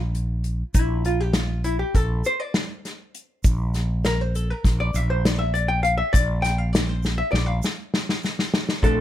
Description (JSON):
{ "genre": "progressive instrumental, band music in an uneven meter", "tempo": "200 BPM (eighths)", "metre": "9/8", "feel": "straight", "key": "Bb lydian", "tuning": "A4 = 440 Hz", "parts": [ { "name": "mellow fretless electric bass", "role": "bass", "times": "0.0-9.0 s", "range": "Bb1", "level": "-23 LUFS", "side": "equal", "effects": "none" }, { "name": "unplugged drum kit", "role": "drums", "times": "0.1-9.0 s", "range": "hi-hat, kick drum, snare drum", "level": "-22 LUFS", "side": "equal", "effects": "none" }, { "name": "archtop guitar, miked and amplified", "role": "accompaniment", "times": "0.7-9.0 s", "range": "F3 to G5", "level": "-25 LUFS", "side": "left 2 dB", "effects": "plate reverb" }, { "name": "egg shaker", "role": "percussion", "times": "0.8-8.4 s", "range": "none", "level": "-39 LUFS", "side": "right 16 dB", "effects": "none" }, { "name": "vintage hollow-body jazz guitar", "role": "melody", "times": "8.8-9.0 s", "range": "A4", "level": "-21 LUFS", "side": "equal", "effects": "slapback echo" } ], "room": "light reverb", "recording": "none", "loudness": "-20 LUFS", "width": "side -12 dB against mid", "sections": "0.0-8.8 A section", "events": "hollow-body jazz guitar solo 0.0-8.8; drum fill 7.0-8.8", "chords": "0.0 Bb" }